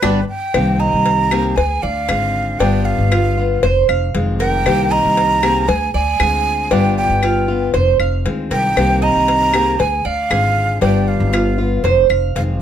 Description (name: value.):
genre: latin, Cuban son and guajira.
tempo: 117 BPM.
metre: 4/4.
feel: straight.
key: C minor.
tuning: A4 = 440 Hz.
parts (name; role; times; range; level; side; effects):
breathy jazz flute; melody; 0.0-12.4 s; B4 to Bb5; -18 LUFS; right 3 dB; plate reverb.
fingerpicked steel-string acoustic guitar; accompaniment; 0.0-12.6 s; C3 to G4; -20 LUFS; left 4 dB; none.
Cuban tres; arpeggios; 0.0-12.6 s; D4 to F5; -21 LUFS; right 8 dB; none.
upright bass; bass; 0.0-12.6 s; F1 to D2; -19 LUFS; equal; none.
bongos and cowbell; percussion; 0.0-12.6 s; none; -22 LUFS; left 5 dB; none.
claves; percussion; 0.0-12.4 s; none; -23 LUFS; left 5 dB; none.
room: moderate studio reverb, RT60 0.5 s.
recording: none.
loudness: -13 LUFS.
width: side -9 dB against mid.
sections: 0.5-12.6 A section.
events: drum fill 0.0-0.5; band accent 0.0-0.5.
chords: 0.0 G; 0.5 Cm7; 1.6 Dm7b5; 2.6 G7; 3.6 Fm7; 4.7 Cm7; 5.7 Dm7b5; 6.7 G7; 7.7 Fm7; 8.8 Cm7; 9.8 Dm7b5; 10.8 G7; 11.8 Fm7.